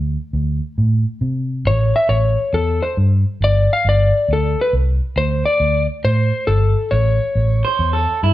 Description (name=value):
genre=blues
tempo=137 BPM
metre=4/4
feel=swing 65% on 8ths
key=unclear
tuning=A4 = 440 Hz
part: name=vintage muted fingered electric bass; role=bass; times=0.0-8.3 s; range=G1 to C3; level=-17 LUFS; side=equal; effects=none
part: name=electric slide guitar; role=melody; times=1.7-8.2 s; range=A4 to F5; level=-18 LUFS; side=left 2 dB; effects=none
part: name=electric guitar through a small old amp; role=second line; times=7.6-8.3 s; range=E4 to C5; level=-18 LUFS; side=right 5 dB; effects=none
room=moderate large studio reverb, RT60 1.1 s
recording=band playing live in one room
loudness=-15 LUFS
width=side -14 dB against mid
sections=0.0-8.3 A section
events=none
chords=0.0 D5; 1.7 A7; 3.4 G5; 5.2 D5; 6.9 A